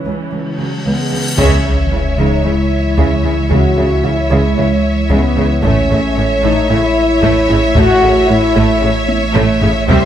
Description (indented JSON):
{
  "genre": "cinematic, hybrid orchestral and electronic film score",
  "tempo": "113 BPM",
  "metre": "4/4",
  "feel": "straight",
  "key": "C# minor",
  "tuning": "A4 = 440 Hz",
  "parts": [
    { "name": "warm studio viola section", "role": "accompaniment", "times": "0.0-10.1 s", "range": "C#3 to A3", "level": "-22 LUFS", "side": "right 3 dB", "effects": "none" },
    { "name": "ethereal airy pad", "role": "sustained chords", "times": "0.0-10.1 s", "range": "C#3 to C#5", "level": "-22 LUFS", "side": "right 2 dB", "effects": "ensemble chorus, built-in reverb, phaser" },
    { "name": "mellow French horn section", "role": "sustained chords", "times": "0.0-10.1 s", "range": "B3 to G4", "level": "-17 LUFS", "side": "left 2 dB", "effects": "none" },
    { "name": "cymbal swell and sub drop", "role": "sound effects", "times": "0.6-3.5 s", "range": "none", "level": "-22 LUFS", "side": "equal", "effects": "none" },
    { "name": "harp-like synth pluck", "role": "arpeggios", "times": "0.1-10.0 s", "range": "C3 to A4", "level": "-22 LUFS", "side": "right 1 dB", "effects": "chorus, tape echo" },
    { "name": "warm symphonic cello section", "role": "bass", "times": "0.1-10.0 s", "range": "C#2 to C#3", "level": "-20 LUFS", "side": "right 1 dB", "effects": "none" },
    { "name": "warm symphonic violin section", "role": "melody", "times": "1.4-10.1 s", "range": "E5", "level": "-22 LUFS", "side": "left 3 dB", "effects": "none" },
    { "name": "rich symphonic violin section", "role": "second line", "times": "1.4-10.1 s", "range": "C5 to C#5", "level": "-21 LUFS", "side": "equal", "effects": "none" },
    { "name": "clear symphonic double bass section", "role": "bass", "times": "1.4-10.0 s", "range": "A1 to C#2", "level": "-20 LUFS", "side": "right 2 dB", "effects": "none" },
    { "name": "warm sub bass", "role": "bass", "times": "1.4-10.1 s", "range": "A1 to C#2", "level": "-19 LUFS", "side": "equal", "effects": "none" },
    { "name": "taiko ensemble", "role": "drums", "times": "1.4-10.1 s", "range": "none", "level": "-19 LUFS", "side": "equal", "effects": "none" }
  ],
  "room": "light reverb",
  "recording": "close, detailed microphones",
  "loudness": "-11 LUFS",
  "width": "side -10 dB against mid",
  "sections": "0.0-1.4 A section; 1.4-10.1 B section",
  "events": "cymbal swell 0.6-1.4; band accent 1.4-1.9; impact 1.4-3.5; drum fill 9.1-9.9",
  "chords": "0.0 C#m; 5.6 A",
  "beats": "0.33 0.86 | 1.39 1.92 2.45 2.98 | 3.51 4.04 4.58 5.11 | 5.64 6.17 6.70 7.23 | 7.76 8.29 8.82 9.35 | 9.88"
}